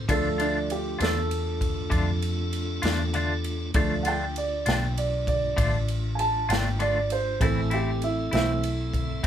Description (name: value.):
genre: slow blues.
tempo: 66 BPM (dotted quarters).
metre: 12/8.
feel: straight.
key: unclear.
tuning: A4 = 439 Hz.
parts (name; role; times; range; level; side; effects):
warm upright piano; accompaniment; 0.0-9.3 s; E3 to A5; -28 LUFS; right 3 dB; none.
tonewheel organ; sustained chords; 0.0-9.3 s; A3 to A4; -36 LUFS; equal; slow rotary speaker.
vintage muted fingered electric bass; bass; 0.0-9.3 s; G#1 to F2; -28 LUFS; equal; none.
clean electric guitar; accompaniment; 0.1-9.3 s; A2 to F4; -29 LUFS; left 2 dB; tremolo.
natural country drum kit; drums; 0.1-9.3 s; kick drum, ride cymbal, snare drum; -30 LUFS; equal; none.
room: moderate studio ambience, RT60 0.4 s.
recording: band playing live in one room.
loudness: -23 LUFS.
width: side -10 dB against mid.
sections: 0.0-9.3 A section.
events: upright piano solo 0.0-9.3.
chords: 0.1 Dm; 7.4 Am.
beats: | 0.09 1.00 1.92 2.83 | 3.75 4.67 5.58 6.50 | 7.41 8.33 9.24.